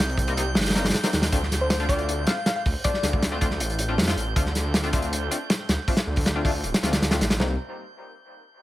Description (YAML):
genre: drum and bass, jungle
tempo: 158 BPM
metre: 4/4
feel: straight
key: unclear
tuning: A4 = 437 Hz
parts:
  - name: detuned saw bass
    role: bass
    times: 0.0-7.6 s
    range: D1 to F2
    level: -27 LUFS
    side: equal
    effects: none
  - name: crunchy breakbeat drum kit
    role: drums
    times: 0.0-7.5 s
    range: hi-hat, kick drum, snare drum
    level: -23 LUFS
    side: equal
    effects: none
  - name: drifting glass-harmonics texture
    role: texture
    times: 0.0-7.4 s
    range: G6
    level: -36 LUFS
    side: right 4 dB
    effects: chorus, built-in reverb
  - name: band-passed chord stab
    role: stabs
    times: 0.3-7.5 s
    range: G3 to F4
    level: -31 LUFS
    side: left 2 dB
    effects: chorus, dub echo
  - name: soft struck synth lead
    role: melody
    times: 1.6-3.2 s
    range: C5 to F5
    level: -30 LUFS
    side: left 2 dB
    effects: chorus, dub echo
room: light reverb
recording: none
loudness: -21 LUFS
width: side -15 dB against mid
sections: 0.0-7.4 A section; 7.4-8.6 B section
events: drop 0.0-7.4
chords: 0.0 Cm7; 1.3 Dm7; 7.4 N.C.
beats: 0.18 0.56 0.94 | 1.32 1.70 2.08 2.46 | 2.84 3.22 3.60 3.98 | 4.36 4.74 5.12 5.50 | 5.88 6.26 6.64 7.02 | 7.40